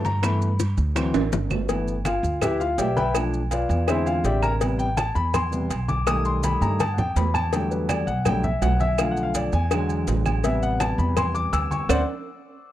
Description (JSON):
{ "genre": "Afro-Cuban jazz", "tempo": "165 BPM", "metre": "4/4", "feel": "straight", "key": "G major", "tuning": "A4 = 439 Hz", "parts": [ { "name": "warm concert grand piano", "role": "accompaniment", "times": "0.0-12.0 s", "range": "C3 to E6", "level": "-25 LUFS", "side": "left 2 dB", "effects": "none" }, { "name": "upright bass", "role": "bass", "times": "0.0-12.0 s", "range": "G1 to G2", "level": "-25 LUFS", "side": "right 1 dB", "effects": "none" }, { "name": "congas", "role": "percussion", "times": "0.0-12.0 s", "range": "none", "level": "-31 LUFS", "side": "equal", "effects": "none" }, { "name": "timbales and agogo bells", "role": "percussion", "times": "0.0-12.0 s", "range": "none", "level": "-31 LUFS", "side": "right 8 dB", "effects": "none" }, { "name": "maracas", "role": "percussion", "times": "0.1-12.0 s", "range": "none", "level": "-38 LUFS", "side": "right 8 dB", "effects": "none" }, { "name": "bongos and cowbell", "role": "percussion", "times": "0.2-12.0 s", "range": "none", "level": "-30 LUFS", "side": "left 9 dB", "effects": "none" }, { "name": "claves", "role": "percussion", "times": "0.2-12.0 s", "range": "none", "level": "-34 LUFS", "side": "right 8 dB", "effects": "none" } ], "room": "studio ambience", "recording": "dry, close 1970s-style studio recording", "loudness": "-21 LUFS", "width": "side -13 dB against mid", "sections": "0.0-1.7 A section; 1.7-12.7 A section", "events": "grand piano solo 0.0-12.7; drum fill 1.1-1.7, 6.4-7.5, 11.9-12.7; band accent 11.9-12.7", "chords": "0.0 G69; 1.0 D7; 1.7 G6; 3.1 Bm7b5; 3.9 E7alt; 4.6 Am7; 6.1 Baug7; 7.5 Em11; 9.0 Bm7b5; 9.7 E7; 10.4 Am7; 11.9 D7" }